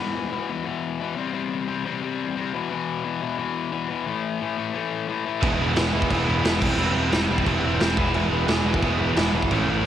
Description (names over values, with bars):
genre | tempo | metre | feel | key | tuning
punk rock | 176 BPM | 4/4 | straight | unclear | A4 = 440 Hz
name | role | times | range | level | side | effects
distorted electric guitar | riff | 0.0-9.9 s | E2 to C4 | -26 LUFS | left 8 dB | distortion, cassette tape
overdriven electric guitar | riff | 5.4-9.9 s | A2 to E4 | -26 LUFS | right 10 dB | cassette tape
scooped high-gain guitar | riff | 5.4-9.9 s | A2 to E4 | -28 LUFS | equal | distortion, cassette tape
growling picked electric bass | bass | 5.4-9.8 s | E1 to A1 | -26 LUFS | equal | overdrive
raw garage drum kit | drums | 5.4-9.6 s | crash cymbal, kick drum, snare drum | -25 LUFS | equal | cassette tape
room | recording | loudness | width
little or no reverb | home recording on cassette | -22 LUFS | side -10 dB against mid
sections
0.0-9.9 A section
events
none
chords
0.0 E5; 1.2 C5; 2.5 E5; 4.1 A5; 5.4 E; 6.6 C/E; 8.0 E